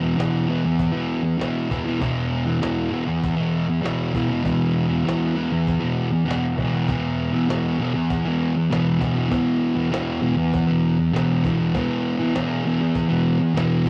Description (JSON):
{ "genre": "garage rock duo or trio", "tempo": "99 BPM", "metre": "4/4", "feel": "straight", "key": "unclear", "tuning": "A4 = 440 Hz", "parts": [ { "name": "fuzz guitar", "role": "riff", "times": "0.0-13.9 s", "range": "E2 to E3", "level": "-22 LUFS", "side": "equal", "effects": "distortion, cassette tape" }, { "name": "cajon", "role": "drums", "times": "0.2-13.9 s", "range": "none", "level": "-33 LUFS", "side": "equal", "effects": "cassette tape" } ], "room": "light reverb", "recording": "home recording on cassette", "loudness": "-22 LUFS", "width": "mono", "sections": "0.0-13.9 A section", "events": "none", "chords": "0.0 E5", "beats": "0.19 0.80 1.41 | 2.02 2.62 3.23 3.84 | 4.45 5.06 5.67 6.28 | 6.88 7.49 8.10 8.71 | 9.31 9.92 10.53 11.14 | 11.74 12.35 12.96 13.56" }